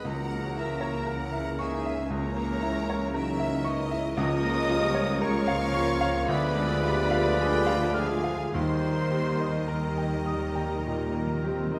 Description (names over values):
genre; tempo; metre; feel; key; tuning
classical; 52-59 BPM; 4/4; rubato; unclear; A4 = 440 Hz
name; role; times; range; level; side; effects
clear grand piano; melody; 0.0-11.8 s; C#2 to F6; -33 LUFS; equal; none
warm symphonic violin section; melody; 0.0-11.8 s; G#5 to Eb6; -42 LUFS; equal; none
bright flute section; second line; 0.0-11.8 s; G#4 to Eb5; -39 LUFS; equal; none
bright studio violin section; second line; 0.0-11.8 s; C#5 to G5; -43 LUFS; equal; none
warm clarinet; second line; 0.0-11.8 s; Ab4 to Eb5; -39 LUFS; equal; none
dark symphonic viola section; accompaniment; 0.0-11.8 s; E3 to G4; -37 LUFS; equal; none
mellow French horn section; sustained chords; 0.0-11.8 s; Ab3 to F4; -39 LUFS; equal; none
warm trombone section; sustained chords; 0.0-11.8 s; C#3 to G3; -39 LUFS; equal; none
mellow trumpet section; stabs; 0.0-11.8 s; Bb4 to D5; -39 LUFS; equal; none
warm chamber cello section; bass; 0.0-11.8 s; C#3 to Eb3; -40 LUFS; equal; none
warm symphonic double bass section; bass; 0.0-11.8 s; C#2 to Eb2; -36 LUFS; equal; none
timpani; percussion; 8.5-11.8 s; Eb3; -40 LUFS; equal; none
room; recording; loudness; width
wet scoring stage reverb, RT60 1.9 s; none; -27 LUFS; mono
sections
0.0-11.8 A section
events
timpani fill 8.5-11.8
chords
0.1 A#dim/C#; 4.2 Bbm/Db; 6.3 Ddim7; 8.5 Eb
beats
| 0.07 1.10 2.12 3.15 | 4.19 5.24 6.30 7.40 | 8.54 9.69 10.85